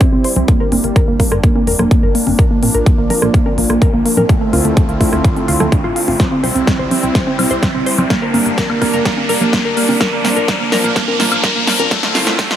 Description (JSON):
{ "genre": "progressive house", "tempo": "126 BPM", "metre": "4/4", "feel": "straight", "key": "unclear", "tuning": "A4 = 440 Hz", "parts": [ { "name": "warm analog pad", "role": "sustained chords", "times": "0.0-12.6 s", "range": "D3 to F4", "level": "-21 LUFS", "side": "right 1 dB", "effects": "lush chorus, sidechain pumping" }, { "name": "glassy wavetable pluck", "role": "arpeggios", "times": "0.0-12.6 s", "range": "A3 to C5", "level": "-17 LUFS", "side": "equal", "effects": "chorus, sidechain pumping, tape echo" }, { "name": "big-room dance drum kit", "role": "drums", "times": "0.0-12.6 s", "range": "hi-hat, rim click, snare drum", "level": "-19 LUFS", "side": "equal", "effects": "overdrive" }, { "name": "electronic kick drum", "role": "drums", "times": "0.0-12.5 s", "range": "none", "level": "-14 LUFS", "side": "equal", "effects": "overdrive" }, { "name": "congas and woodblock", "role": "percussion", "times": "0.0-12.2 s", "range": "none", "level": "-23 LUFS", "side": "left 1 dB", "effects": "overdrive, sidechain pumping on perc" }, { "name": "riser", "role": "sound effects", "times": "0.7-12.6 s", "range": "none", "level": "-22 LUFS", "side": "left 1 dB", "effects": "none" }, { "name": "plucky analog bass", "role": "bass", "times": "0.1-12.6 s", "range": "F1 to D2", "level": "-22 LUFS", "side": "equal", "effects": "sidechain pumping" } ], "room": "light reverb, digital ambience", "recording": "high-pass filter", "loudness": "-11 LUFS", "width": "side -10 dB against mid", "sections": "0.0-12.6 A section", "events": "build-up 0.0-12.6; filter sweep on synth arpeggio sound 0.0-12.6; filter sweep 0.0-12.6; riser 0.7-12.6; drum fill 6.2-12.6", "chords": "0.5 Gm; 2.4 Bb; 4.3 Dm7; 6.2 C; 8.1 Gm; 10.0 Bb; 11.9 Dm7" }